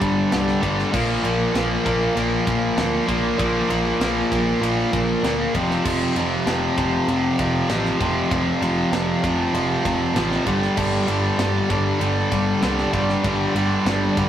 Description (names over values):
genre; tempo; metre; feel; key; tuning
hard rock; 98 BPM; 4/4; straight; unclear; A4 = 438 Hz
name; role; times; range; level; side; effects
cranked stack guitar; riff; 0.0-14.3 s; F2 to Bb3; -24 LUFS; equal; overdrive
sludgy distorted guitar; riff; 0.0-14.3 s; F2 to Bb3; -21 LUFS; equal; overdrive
overdriven picked electric bass; bass; 0.0-14.3 s; F1 to D2; -28 LUFS; equal; none
tight metal drum kit; drums; 0.0-14.3 s; crash cymbal, kick drum, ride cymbal, snare drum; -28 LUFS; equal; none
room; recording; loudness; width
moderate small room reverb, RT60 0.5 s; rough rehearsal-room recording, tube saturation; -18 LUFS; side -10 dB against mid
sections
0.0-14.3 A section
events
none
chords
0.0 G5; 0.9 Bb5; 5.5 F5; 10.5 G5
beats
0.32 | 0.93 1.55 2.16 2.78 | 3.39 4.01 4.62 5.24 | 5.85 6.46 7.08 7.69 | 8.31 8.92 9.54 10.15 | 10.77 11.39 12.00 12.62 | 13.24 13.86